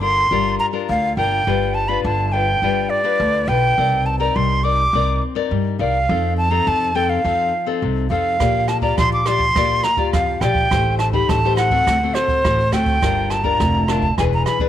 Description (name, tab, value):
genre	samba and choro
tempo	104 BPM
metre	4/4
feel	straight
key	G minor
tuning	A4 = 439 Hz
part	breathy bright jazz flute	melody	0.0-14.6 s	C5 to D6	-18 LUFS	right 1 dB	slapback echo
part	nylon-string guitar	accompaniment	0.0-14.7 s	A2 to D5	-23 LUFS	left 11 dB	none
part	upright bass	bass	0.0-14.4 s	E1 to G2	-22 LUFS	right 1 dB	none
part	jazz brush drum kit	drums	8.4-14.7 s	hi-hat, kick drum, rim click	-23 LUFS	right 3 dB	none
room	light reverb, small room ambience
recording	1960s-style stereo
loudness	-16 LUFS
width	side -11 dB against mid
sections	0.0-14.7 A section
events	none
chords	0.0 Gm7; 1.5 G7; 3.8 Cm9; 6.1 F7; 8.4 Bb6; 10.7 Am7b5; 11.9 D7; 13.0 Gm7; 14.2 E7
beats	0.31 0.89 | 1.47 2.05 2.62 3.20 | 3.78 4.36 4.94 5.51 | 6.09 6.67 7.25 7.83 | 8.40 8.98 9.56 10.14 | 10.71 11.29 11.87 12.45 | 13.03 13.60 14.18